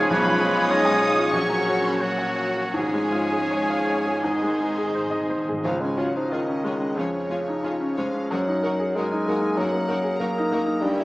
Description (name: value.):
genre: classical, romantic movement for piano and orchestra.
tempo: 79-100 BPM.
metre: 4/4.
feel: rubato.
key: Db major.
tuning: A4 = 440 Hz.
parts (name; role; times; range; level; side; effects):
clear grand piano; melody; 0.0-11.0 s; Bb1 to Ab5; -24 LUFS; left 1 dB; none.
clear studio violin section; melody; 0.0-11.0 s; Db5 to Eb6; -34 LUFS; left 1 dB; none.
clear oboe; second line; 0.0-4.9 s; Gb4 to Eb5; -29 LUFS; equal; none.
flute section; second line; 0.0-4.9 s; Gb5 to Eb6; -32 LUFS; equal; none.
rich studio violin section; second line; 0.0-11.0 s; F4 to Db5; -34 LUFS; equal; none.
rich studio viola section; accompaniment; 0.0-11.0 s; Eb3 to F4; -35 LUFS; equal; none.
bright trombone section; sustained chords; 0.0-5.3 s; Eb3 to Bb3; -33 LUFS; right 1 dB; none.
mellow French horn section; sustained chords; 0.0-5.3 s; C4 to Ab4; -29 LUFS; left 1 dB; none.
mellow trumpet; stabs; 0.0-5.3 s; Db5 to Eb5; -29 LUFS; right 1 dB; none.
clear studio cello section; bass; 0.0-11.0 s; Db2 to Eb4; -35 LUFS; equal; none.
rich studio double bass section; bass; 0.0-11.0 s; F1 to Db2; -42 LUFS; right 1 dB; none.
timpani; percussion; 2.8-6.6 s; Ab2 to Db3; -40 LUFS; equal; none.
dark bassoon; accompaniment; 5.6-11.0 s; Db3 to Bb3; -26 LUFS; right 1 dB; none.
room: wet scoring stage reverb, RT60 1.6 s.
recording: small speaker sound.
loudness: -21 LUFS.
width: side -19 dB against mid.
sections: 0.0-5.6 A section; 5.6-11.0 B section.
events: timpani fill 4.2-5.6.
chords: 0.1 Db7/Cb; 1.3 Gb/Bb; 2.8 Db/Ab; 4.2 Ab; 5.6 Db; 7.0 Db/F; 8.3 Ebm/Gb.